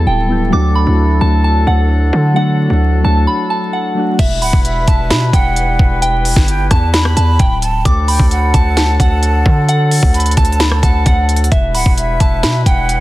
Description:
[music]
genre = hip hop, trap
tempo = 131 BPM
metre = 4/4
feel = half-time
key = E minor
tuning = A4 = 440 Hz
[part]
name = soft synth bell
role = melody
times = 0.0-13.0 s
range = E5 to D6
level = -19 LUFS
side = equal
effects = chorus, digital delay
[part]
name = soft electric-piano-like synth keys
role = accompaniment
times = 0.0-4.2 s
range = F#3 to A4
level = -18 LUFS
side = left 1 dB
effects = chorus
[part]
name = warm woodwind section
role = sustained chords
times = 0.0-13.0 s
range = E3 to B4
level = -23 LUFS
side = left 1 dB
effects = none
[part]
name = distorted 808-style bass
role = bass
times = 0.0-13.0 s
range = D1 to D3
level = -14 LUFS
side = equal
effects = distortion
[part]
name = trap drum kit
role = drums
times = 4.2-13.0 s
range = crash cymbal, hi-hat, kick drum, rim click, snare drum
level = -13 LUFS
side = equal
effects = none
[part]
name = breathy jazz flute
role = second line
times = 4.4-13.0 s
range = E5 to B5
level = -22 LUFS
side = right 3 dB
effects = digital delay
[sound]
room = digital ambience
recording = dense, heavily limited modern master, vinyl crackle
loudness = -10 LUFS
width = side -17 dB against mid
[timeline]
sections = 0.0-4.2 A section; 4.2-13.0 B section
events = break 3.3-4.2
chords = 0.0 Em; 0.5 D; 4.2 Em; 7.9 D; 11.5 Em

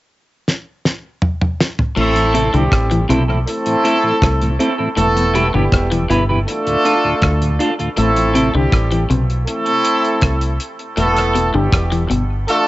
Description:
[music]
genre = dub reggae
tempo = 80 BPM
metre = 4/4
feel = straight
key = A minor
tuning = A4 = 443 Hz
[part]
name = damped 70s drum kit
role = drums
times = 0.5-12.7 s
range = crash cymbal, hi-hat, kick drum, rim click, snare drum, toms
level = -19 LUFS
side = equal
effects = cassette tape
[part]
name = warm horn section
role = second line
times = 2.0-12.7 s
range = G3 to A4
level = -17 LUFS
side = equal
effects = cassette tape, dub echo, plate reverb
[part]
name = electric guitar at the edge of break-up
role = arpeggios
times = 2.0-12.2 s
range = A2 to E3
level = -22 LUFS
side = left 3 dB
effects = cassette tape, dub echo, plate reverb
[part]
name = deep dub fingered electric bass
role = bass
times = 2.0-12.5 s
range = E1 to D2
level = -18 LUFS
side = equal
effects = none
[part]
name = mellow tonewheel organ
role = accompaniment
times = 2.2-8.3 s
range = D2 to F4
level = -25 LUFS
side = left 1 dB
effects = chorus vibrato, slow rotary speaker, cassette tape, dub echo
[part]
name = clean electric guitar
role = accompaniment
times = 2.3-8.5 s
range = C4 to B4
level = -22 LUFS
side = right 2 dB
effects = lush chorus, cassette tape, dub echo, plate reverb
[sound]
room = light reverb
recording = home recording on cassette, nothing above 7.9 kHz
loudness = -14 LUFS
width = side -17 dB against mid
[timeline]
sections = 0.0-2.0 A section; 2.0-12.7 B section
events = drum fill 0.5-2.0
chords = 0.0 N.C.; 2.0 Am; 5.0 Em; 6.5 Dm; 8.0 Am; 11.0 Em

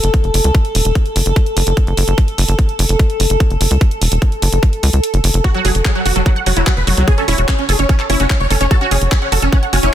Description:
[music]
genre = psychedelic trance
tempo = 147 BPM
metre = 4/4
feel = straight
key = F# minor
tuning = A4 = 440 Hz
[part]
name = evolving wavetable pad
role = sustained chords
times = 0.0-9.9 s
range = A4 to C#5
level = -22 LUFS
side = left 1 dB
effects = chorus, built-in reverb, sidechain pumping
[part]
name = tight sequencer bass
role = bass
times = 0.0-9.9 s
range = E1 to C#2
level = -14 LUFS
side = equal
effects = none
[part]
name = garage drum kit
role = drums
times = 0.0-9.9 s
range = handclaps, hi-hat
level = -21 LUFS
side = right 1 dB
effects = studio ambience
[part]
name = electronic kick drum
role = drums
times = 0.1-9.6 s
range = none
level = -13 LUFS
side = equal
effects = studio ambience
[part]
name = dense compressed supersaw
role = melody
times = 5.4-9.9 s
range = F#3 to C#5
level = -19 LUFS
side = right 1 dB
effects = phaser, sidechain pumping, dub echo
[part]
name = wide unison pluck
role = riff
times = 5.4-9.9 s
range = E4 to F#5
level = -21 LUFS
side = right 2 dB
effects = auto-pan, sidechain pumping, tape echo
[sound]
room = little or no reverb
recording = dense, heavily limited modern master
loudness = -12 LUFS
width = side -11 dB against mid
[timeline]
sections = 0.0-9.9 A section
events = kick drops out 5.0-5.4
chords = 0.0 F#5

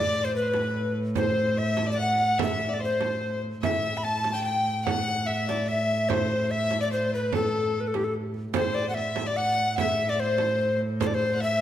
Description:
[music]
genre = medieval dance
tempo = 146 BPM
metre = 3/4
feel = straight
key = A dorian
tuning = A4 = 437 Hz
[part]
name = breathy bright alto recorder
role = melody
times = 0.0-11.6 s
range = G4 to B5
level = -26 LUFS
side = left 1 dB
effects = none
[part]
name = clear fiddle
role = second line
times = 0.0-11.6 s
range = A4 to A5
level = -32 LUFS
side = left 3 dB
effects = none
[part]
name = dark viola da gamba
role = drone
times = 0.0-11.6 s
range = A2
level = -30 LUFS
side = right 1 dB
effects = none
[part]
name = frame drum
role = percussion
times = 0.3-11.5 s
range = none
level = -32 LUFS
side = right 6 dB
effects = none
[sound]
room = wet recital hall reverb, RT60 1.5 s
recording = none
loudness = -24 LUFS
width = side -11 dB against mid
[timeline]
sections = 0.0-8.6 A section; 8.6-11.6 A section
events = none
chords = none

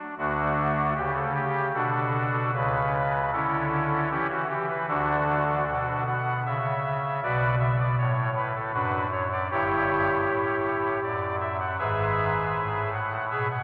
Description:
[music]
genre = classical, chorale-style piece for pipe organ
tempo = 78 BPM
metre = 3/4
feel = rubato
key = D major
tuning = A4 = 443 Hz
[part]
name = pipe organ, soft reed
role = solo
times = 0.0-13.6 s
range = G1 to F#5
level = -26 LUFS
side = equal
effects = none
[sound]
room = wet church reverb, RT60 3.7 s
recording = none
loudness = -26 LUFS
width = mono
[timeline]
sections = 0.2-13.6 A section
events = none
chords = 0.2 D; 2.5 A/C#; 4.9 D; 7.2 Bm; 9.5 Em/G; 11.8 E/G#

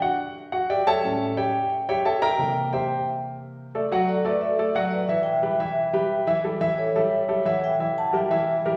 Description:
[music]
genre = latin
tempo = 178 BPM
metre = 4/4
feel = straight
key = D major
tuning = A4 = 441 Hz
[part]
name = warm baby grand piano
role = accompaniment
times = 0.0-8.8 s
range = A2 to Bb5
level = -26 LUFS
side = equal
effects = none
[part]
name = vibraphone with soft mallets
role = melody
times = 4.1-8.8 s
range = A4 to A5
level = -26 LUFS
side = equal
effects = none
[sound]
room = wet recital hall reverb, RT60 1.6 s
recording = recorded in a church or concert hall, small room ambience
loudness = -24 LUFS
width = mono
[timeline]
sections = 0.0-3.7 A section; 3.7-8.8 B section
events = grand piano solo 0.0-3.7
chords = 0.0 Em7; 1.0 A7; 2.4 C7; 3.7 D; 5.1 Em; 6.4 A7; 7.8 Em

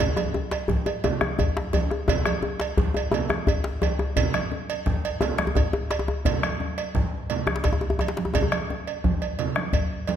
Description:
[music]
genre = west african traditional, West African drum ensemble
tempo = 115 BPM (dotted quarters)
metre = 12/8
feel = straight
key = none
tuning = none
[part]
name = congas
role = percussion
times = 0.0-10.2 s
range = none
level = -30 LUFS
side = right 5 dB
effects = none
[part]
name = cowbell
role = percussion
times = 0.0-10.2 s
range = none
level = -30 LUFS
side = right 7 dB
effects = none
[part]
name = djembe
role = percussion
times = 0.0-9.9 s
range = none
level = -31 LUFS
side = left 4 dB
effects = none
[part]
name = djembe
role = percussion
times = 0.0-8.6 s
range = none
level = -26 LUFS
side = left 2 dB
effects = none
[part]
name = bombo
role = percussion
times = 0.7-10.2 s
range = none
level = -28 LUFS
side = equal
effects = none
[sound]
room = wet recital hall reverb, RT60 1.4 s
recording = none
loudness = -22 LUFS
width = side -9 dB against mid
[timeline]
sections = 0.0-10.2 A section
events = drum fill 7.6-8.3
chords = none

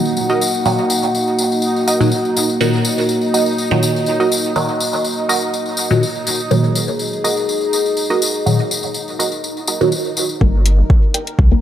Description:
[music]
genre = dub techno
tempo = 123 BPM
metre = 4/4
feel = straight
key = unclear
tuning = A4 = 441 Hz
[part]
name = dark analog pad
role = sustained chords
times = 0.0-10.4 s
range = Bb3 to Gb5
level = -19 LUFS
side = left 1 dB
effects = chorus, sidechain pumping
[part]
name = filtered dub chord stab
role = stabs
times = 0.0-11.6 s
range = Bb2 to Bb3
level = -19 LUFS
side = equal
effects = phaser, sidechain pumping, dub echo
[part]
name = bubbling stepped-filter texture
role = texture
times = 0.0-11.6 s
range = Eb4 to Bb4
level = -27 LUFS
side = right 2 dB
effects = chorus, built-in reverb, sidechain pumping
[part]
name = tambourine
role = percussion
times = 0.1-10.4 s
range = none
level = -22 LUFS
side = left 3 dB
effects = none
[part]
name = filtered dub chord stab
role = riff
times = 0.3-11.3 s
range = Gb4 to G5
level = -23 LUFS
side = right 4 dB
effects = phaser, sidechain pumping, dub echo
[part]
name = pure sine sub bass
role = bass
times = 10.4-11.5 s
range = G1 to C2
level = -14 LUFS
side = equal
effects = sidechain pumping
[part]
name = electronic kick drum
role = drums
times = 10.4-11.5 s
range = none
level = -12 LUFS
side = equal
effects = overdrive
[part]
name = electronic hi-hat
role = drums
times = 10.7-11.4 s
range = none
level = -18 LUFS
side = left 3 dB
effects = overdrive, low-pass filter on hats, low-pass filter on room
[sound]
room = moderate lush hall reverb, RT60 2.2 s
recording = none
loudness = -14 LUFS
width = side -10 dB against mid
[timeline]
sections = 0.0-10.4 A section; 10.4-11.6 B section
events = none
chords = 0.0 Ebm; 10.4 Gm

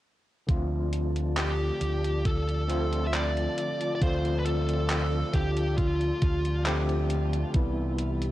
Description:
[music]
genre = vaporwave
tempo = 68 BPM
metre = 4/4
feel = straight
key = D dorian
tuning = A4 = 439 Hz
[part]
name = overdriven tine electric piano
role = accompaniment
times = 0.5-8.3 s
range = C3 to G4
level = -32 LUFS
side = left 1 dB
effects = medium tremolo, wide subtle chorus, tape echo
[part]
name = soft string machine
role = sustained chords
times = 0.5-8.3 s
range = F4 to B5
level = -40 LUFS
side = equal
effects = ensemble chorus
[part]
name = fingered electric bass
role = bass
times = 0.5-8.3 s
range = C2 to D2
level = -28 LUFS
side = equal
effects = tube saturation
[part]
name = electronic kick drum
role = drums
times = 0.5-7.7 s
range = none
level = -26 LUFS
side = equal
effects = overdrive
[part]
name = gated 80s digital drum machine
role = drums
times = 0.5-8.3 s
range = handclaps, hi-hat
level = -34 LUFS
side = equal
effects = gated reverb, overdrive
[part]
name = high-gain lead guitar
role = melody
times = 1.4-6.6 s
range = F4 to E5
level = -32 LUFS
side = equal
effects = distortion, tape echo
[sound]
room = light reverb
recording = cassette tape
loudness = -25 LUFS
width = side -15 dB against mid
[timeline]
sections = 0.5-8.3 A section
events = none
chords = 0.5 Dm7; 7.5 Cmaj7

